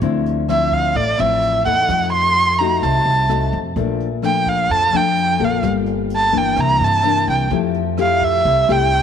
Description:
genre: bossa nova.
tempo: 128 BPM.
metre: 4/4.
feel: straight.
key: F major.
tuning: A4 = 444 Hz.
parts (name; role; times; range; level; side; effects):
nylon-string guitar; accompaniment; 0.0-9.0 s; F2 to A4; -20 LUFS; left 11 dB; none.
upright bass; bass; 0.0-9.0 s; G1 to G2; -23 LUFS; right 2 dB; none.
jazz brush drum kit; drums; 0.0-9.0 s; hi-hat, kick drum, rim click; -33 LUFS; right 7 dB; none.
warm erhu; melody; 0.5-9.0 s; D5 to C6; -16 LUFS; right 2 dB; none.
room: light reverb.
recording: 1960s-style stereo with parts hard left and right.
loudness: -14 LUFS.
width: side -8 dB against mid.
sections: 0.0-9.0 A section.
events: none.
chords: 0.0 Dm9; 1.9 F7b9; 3.8 Bbmaj7; 5.6 Gm9; 6.6 C9; 7.5 Fmaj9.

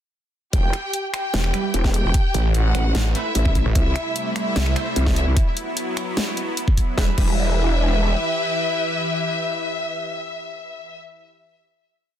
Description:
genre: heavy wobble dubstep.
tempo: 149 BPM.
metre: 4/4.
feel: half-time.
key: E minor.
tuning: A4 = 440 Hz.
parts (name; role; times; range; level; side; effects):
rich studio violin section; melody; 0.5-11.0 s; E4 to G5; -26 LUFS; left 2 dB; vintage 12-bit sampler grit, digital delay.
growl bass; bass; 0.5-8.1 s; E1 to C2; -20 LUFS; equal; chorus, overdrive.
dubstep drum kit; drums; 0.5-7.3 s; crash cymbal, finger snaps, hi-hat, snare drum; -27 LUFS; left 1 dB; none.
electronic kick drum; drums; 0.5-7.3 s; none; -19 LUFS; equal; none.
snarling distorted saw bass; bass; 1.3-4.7 s; E1 to C2; -20 LUFS; equal; distortion, overdrive.
orchestra-hit-like synth stab; stabs; 1.5-11.7 s; G3 to C5; -30 LUFS; right 7 dB; built-in reverb, phaser, cassette tape, digital delay.
supersaw pad; sustained chords; 4.0-11.0 s; C3 to B4; -28 LUFS; equal; phaser, sidechain pumping.
room: little or no reverb.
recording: dense, heavily limited modern master.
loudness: -19 LUFS.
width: side -10 dB against mid.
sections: 0.5-7.0 drop; 7.0-10.2 final chord.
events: drop 0.5-7.0.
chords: 0.5 Em; 2.1 Amadd9; 3.8 C6; 5.4 Bsus4; 7.0 Em.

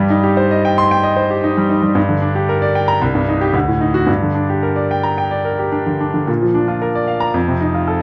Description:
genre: classical, virtuoso piano study.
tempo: 112 BPM.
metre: 4/4.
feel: rubato.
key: G minor.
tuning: A4 = 440 Hz.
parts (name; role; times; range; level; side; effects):
clear grand piano; solo; 0.0-8.0 s; C2 to C6; -16 LUFS; equal; none.
room: moderate large studio reverb, RT60 1.1 s.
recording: dark, warm production.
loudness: -16 LUFS.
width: mono.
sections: 0.0-6.3 A section; 6.3-8.0 B section.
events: none.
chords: 0.0 Cm/G; 2.0 Gm; 3.0 Cm; 3.5 D; 4.1 Gm; 6.3 Bb; 7.3 F7.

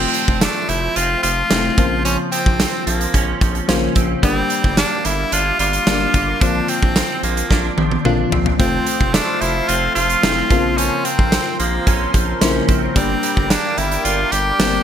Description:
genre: 1980s-style pop.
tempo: 110 BPM.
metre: 4/4.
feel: straight.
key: unclear.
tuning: A4 = 440 Hz.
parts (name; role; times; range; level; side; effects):
edgy tenor saxophone; melody; 0.0-14.8 s; Bb3 to G4; -20 LUFS; equal; ping-pong delay.
FM electric piano; accompaniment; 0.0-14.8 s; Db3 to C5; -23 LUFS; left 4 dB; chorus.
direct-recorded clean electric guitar; riff; 0.0-14.8 s; F3 to D4; -25 LUFS; right 5 dB; ensemble chorus, ping-pong delay.
round analog bass; bass; 0.0-14.8 s; F1 to Bb1; -24 LUFS; equal; none.
big rock drum kit; drums; 0.1-14.7 s; hi-hat, kick drum, snare drum, tambourine, toms; -19 LUFS; right 1 dB; none.
sweeping resonant pad; sustained chords; 8.6-14.8 s; A4 to D6; -26 LUFS; equal; chorus, phaser.
room: light reverb, small room ambience.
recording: bright 1980s-style digital production.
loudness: -15 LUFS.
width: side -9 dB against mid.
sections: 0.0-14.8 A section.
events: drum fill 7.5-8.6.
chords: 0.0 F; 1.8 Bbmadd9; 4.2 Gm; 6.4 Bbadd9; 8.6 F; 10.5 Bbmadd9; 13.0 Gm.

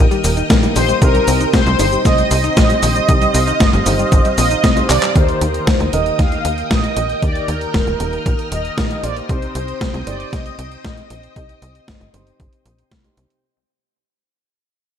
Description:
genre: italo disco.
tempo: 116 BPM.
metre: 4/4.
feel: straight.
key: unclear.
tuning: A4 = 440 Hz.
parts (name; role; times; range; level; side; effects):
string machine, full ensemble; sustained chords; 0.0-13.4 s; Bb4 to F6; -26 LUFS; equal; phaser, ensemble chorus.
analog pluck; arpeggios; 0.0-5.1 s; Eb3 to Eb4; -23 LUFS; left 5 dB; chorus, ping-pong delay.
dark grand piano; stabs; 0.0-13.4 s; C3 to Eb5; -24 LUFS; right 1 dB; low-pass filter.
tight sequencer bass; bass; 0.0-13.3 s; Eb1 to Eb2; -20 LUFS; equal; none.
clean 12-bit digital drum machine; drums; 0.1-13.4 s; cabasa, handclaps, hi-hat, snare drum; -20 LUFS; left 1 dB; gated reverb.
electronic kick drum; drums; 0.5-13.0 s; none; -16 LUFS; equal; none.
mellow synth brass; melody; 0.8-12.9 s; Bb4 to F5; -20 LUFS; right 1 dB; chorus, ping-pong delay.
room: light reverb, digital ambience.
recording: none.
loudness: -13 LUFS.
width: side -8 dB against mid.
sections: 0.0-5.2 A section; 5.2-13.4 B section.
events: drum fill 4.9; fade-out 5.2-13.4; filter sweep on grand piano 5.2-13.4.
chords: 0.0 Eb; 1.0 Cm; 5.2 Eb; 9.3 Cm.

